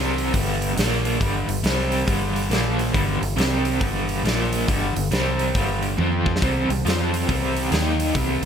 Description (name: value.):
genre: blues rock power trio and southern rock.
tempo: 138 BPM.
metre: 4/4.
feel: swing 63% on 8ths.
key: unclear.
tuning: A4 = 440 Hz.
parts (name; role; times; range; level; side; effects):
raw garage guitar; riff; 0.0-8.5 s; G2 to F4; -23 LUFS; equal; overdrive, tremolo.
vintage muted fingered electric bass; bass; 0.0-8.5 s; G1 to F2; -25 LUFS; equal; none.
big rock drum kit; drums; 0.2-8.5 s; hi-hat, kick drum, snare drum, toms; -25 LUFS; equal; none.
room: light reverb.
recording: none.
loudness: -19 LUFS.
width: side -8 dB against mid.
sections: 0.0-8.5 A section.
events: drum fill 6.0-6.4.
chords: 0.3 G5; 0.8 Bb5; 1.2 G5; 1.6 C5; 2.1 G5; 2.5 Bb5; 2.9 G5; 3.4 C5; 3.8 G5; 4.2 Bb5; 4.7 G5; 5.1 C5; 5.5 G5; 6.0 F5; 6.4 C5; 6.8 F5; 7.3 C5; 7.7 Eb5.